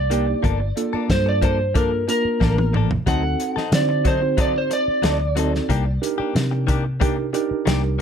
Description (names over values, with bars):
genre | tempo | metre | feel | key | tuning
straight-eighth soul blues | 91 BPM | 4/4 | straight | G minor | A4 = 442 Hz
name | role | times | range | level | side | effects
electric slide guitar | melody | 0.0-6.0 s | Bb4 to F#5 | -23 LUFS | right 1 dB | none
vintage muted fingered electric bass | bass | 0.0-8.0 s | G1 to D3 | -22 LUFS | equal | none
mellow reed electric piano | accompaniment | 0.1-8.0 s | Bb3 to C5 | -25 LUFS | right 5 dB | fast tremolo
direct-recorded clean electric guitar | stabs | 0.1-8.0 s | Eb3 to A4 | -28 LUFS | left 8 dB | tape echo
warm soul drum kit | drums | 0.1-7.8 s | hi-hat, kick drum, snare drum, toms | -23 LUFS | equal | none
room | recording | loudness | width
light reverb | none | -18 LUFS | side -7 dB against mid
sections
0.0-8.0 A section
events
electric slide guitar solo 0.0-8.0; drum fill 2.4-3.1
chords
0.4 Gm9; 3.1 D7b9; 5.7 Cm9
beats
| 0.43 1.09 1.75 2.41 | 3.07 3.73 4.38 5.04 | 5.70 6.36 7.01 7.67